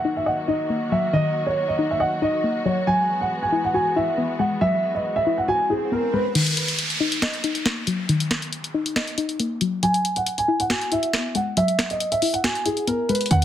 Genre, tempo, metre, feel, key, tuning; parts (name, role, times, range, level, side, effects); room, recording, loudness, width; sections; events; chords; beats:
hip hop, trap; 138 BPM; 4/4; half-time; Eb phrygian; A4 = 440 Hz
dark concert grand piano; melody; 0.0-6.3, 9.8-13.4 s; G#4 to G#5; -22 LUFS; right 2 dB; low-pass filter, digital delay
soft round pluck; accompaniment; 0.0-13.4 s; Eb3 to Eb5; -24 LUFS; left 4 dB; chorus, low-pass filter
muted symphonic string section; sustained chords; 0.0-6.3 s; Eb3 to Gb4; -31 LUFS; equal
swell and downlifter; sound effects; 5.2-9.8 s; -29 LUFS; right 2 dB
trap drum kit; drums; 6.4-13.4 s; crash cymbal, finger snaps, hi-hat, snare drum; -25 LUFS; equal
hard-hitting 808-style bass; bass; 13.3-13.4 s; Eb2; -19 LUFS; right 1 dB
light reverb, digital ambience; dense, heavily limited modern master; -20 LUFS; side -10 dB against mid
0.0-6.4 A section; 6.4-13.4 B section
swell 5.2-6.4; kick muted 6.4-13.3; filter sweep 6.4-13.3
0.0 Ebm; 2.9 Eadd9; 6.4 Ebm; 9.8 Eadd9
0.27 0.70 | 1.14 1.57 2.00 2.44 | 2.87 3.31 3.74 4.18 | 4.61 5.05 5.48 5.92 | 6.35 6.79 7.22 7.66 | 8.09 8.53 8.96 9.40 | 9.83 10.27 10.70 11.13 | 11.57 12.00 12.44 12.87 | 13.31